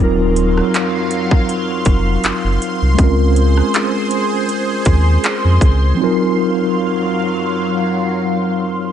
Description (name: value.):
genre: contemporary R&B.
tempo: 80 BPM.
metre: 4/4.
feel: swing 54% on 16ths.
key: Eb dorian.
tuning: A4 = 440 Hz.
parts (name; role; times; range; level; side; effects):
mellow tine electric piano; accompaniment; 0.0-8.9 s; F3 to Bb4; -17 LUFS; equal; medium stereo tremolo.
lush unison pad; sustained chords; 0.0-8.9 s; Gb3 to C6; -21 LUFS; right 1 dB; chorus, phaser.
sub bass with octave; bass; 0.0-5.9 s; Eb1 to F2; -14 LUFS; equal; none.
trap drum kit; drums; 0.4-5.8 s; handclaps, hi-hat, kick drum, rim click; -17 LUFS; equal; overdrive.
room: light reverb.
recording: nothing above 10.9 kHz.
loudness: -13 LUFS.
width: side -9 dB against mid.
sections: 0.0-8.9 A section.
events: break 6.0-8.9.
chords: 0.0 Ebm69; 3.0 Bbm9/Db; 6.0 Ebm69.